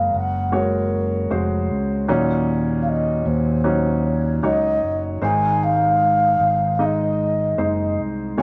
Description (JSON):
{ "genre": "pop ballad", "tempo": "77 BPM", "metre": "4/4", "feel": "straight", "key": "unclear", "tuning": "A4 = 440 Hz", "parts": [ { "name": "breathy mellow alto ocarina", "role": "melody", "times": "0.0-8.4 s", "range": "Bb4 to Ab5", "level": "-23 LUFS", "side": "equal", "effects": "none" }, { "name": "clear upright piano", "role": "accompaniment", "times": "0.0-8.4 s", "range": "Ab2 to Eb5", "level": "-26 LUFS", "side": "equal", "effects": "none" }, { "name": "fingered electric bass", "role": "bass", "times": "0.0-8.4 s", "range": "F1 to Eb2", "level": "-25 LUFS", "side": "equal", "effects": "none" } ], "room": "moderate studio reverb, RT60 0.7 s", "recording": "none", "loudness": "-20 LUFS", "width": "mono", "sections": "0.0-8.4 A section", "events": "none", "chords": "0.0 Gbadd9; 2.1 Ebm7; 5.2 Ab", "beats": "0.53 1.30 | 2.08 2.86 3.64 4.42 | 5.21 6.00 6.79 7.58 | 8.38" }